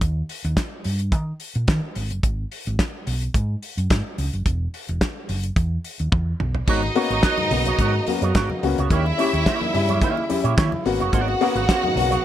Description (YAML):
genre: disco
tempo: 108 BPM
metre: 4/4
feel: straight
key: G# minor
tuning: A4 = 441 Hz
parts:
  - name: hollow-body short-scale fingered electric bass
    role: bass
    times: 0.0-12.2 s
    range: E1 to D#3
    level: -24 LUFS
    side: equal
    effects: none
  - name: damped 70s drum kit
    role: drums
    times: 0.0-12.2 s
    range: hi-hat, kick drum, snare drum, splash cymbal, toms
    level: -23 LUFS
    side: equal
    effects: gated reverb
  - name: bright studio string section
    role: second line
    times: 6.7-12.2 s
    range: D#4 to F#5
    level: -25 LUFS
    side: equal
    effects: none
  - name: dark grand piano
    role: accompaniment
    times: 6.7-12.1 s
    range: G#2 to G4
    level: -25 LUFS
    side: left 8 dB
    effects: none
  - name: electric guitar with an envelope filter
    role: accompaniment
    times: 6.7-12.2 s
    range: A#3 to C#5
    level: -26 LUFS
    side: right 8 dB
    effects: analog chorus
  - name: mellow French horn section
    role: sustained chords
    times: 6.7-12.2 s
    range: C#3 to F#4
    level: -28 LUFS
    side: right 2 dB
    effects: none
  - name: congas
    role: percussion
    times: 6.8-12.2 s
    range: none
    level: -33 LUFS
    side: left 3 dB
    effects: none
room: little or no reverb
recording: none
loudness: -20 LUFS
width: side -12 dB against mid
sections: 0.0-12.2 A section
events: drum fill 6.1-6.7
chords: 0.0 D#; 2.0 G#7(no3); 4.5 E5; 6.7 G#m11; 8.9 D#7b9; 10.9 G#m11